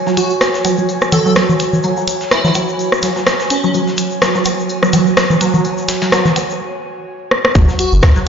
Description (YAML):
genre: minimal techno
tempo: 126 BPM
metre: 4/4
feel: swing 56% on 16ths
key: unclear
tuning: A4 = 440 Hz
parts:
  - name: airy breathy pad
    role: texture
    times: 0.0-6.6 s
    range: F#4 to G#5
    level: -21 LUFS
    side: equal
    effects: chorus, sidechain pumping
  - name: resonant blip pluck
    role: riff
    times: 0.1-8.2 s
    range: F#3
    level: -18 LUFS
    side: right 2 dB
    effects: phaser, analog chorus, sidechain pumping, ping-pong delay
  - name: breakbeat sampler-style drum kit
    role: drums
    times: 0.1-8.3 s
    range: hi-hat, snare drum, tambourine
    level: -27 LUFS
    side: left 1 dB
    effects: sidechain pumping on perc, high-pass filter on perc, high-pass filter on snare, sidechain pumping on hats, high-pass filter on hats
  - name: egg shaker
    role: percussion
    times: 0.1-8.2 s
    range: none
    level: -28 LUFS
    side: left 4 dB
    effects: none
  - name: airy dreamy lead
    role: melody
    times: 0.2-3.7, 7.8-7.9 s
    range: C#4 to A4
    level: -21 LUFS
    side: right 1 dB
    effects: chorus, dub echo
  - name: garage drum kit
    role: drums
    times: 0.2-8.1 s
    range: hi-hat, rim click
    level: -17 LUFS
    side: equal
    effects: overdrive
  - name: woodblock and congas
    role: percussion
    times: 0.6-6.5 s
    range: none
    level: -18 LUFS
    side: equal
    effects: overdrive
  - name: saturated sub bass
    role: bass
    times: 7.6-8.0 s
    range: F#1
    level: -13 LUFS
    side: equal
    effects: sidechain pumping
  - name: electronic kick drum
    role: drums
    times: 7.6-8.1 s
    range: none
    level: -10 LUFS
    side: equal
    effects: overdrive
room: wet lush hall reverb, RT60 2.0 s, digital ambience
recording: played on a big sound system in a bare room, large studio reverb, nothing above 7.5 kHz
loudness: -12 LUFS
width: side -7 dB against mid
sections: 0.0-7.6 A section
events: build-up 0.0-7.6; filter sweep on synth pluck 0.0-7.6; break 6.6-7.6; drum fill 7.3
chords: 0.0 F#5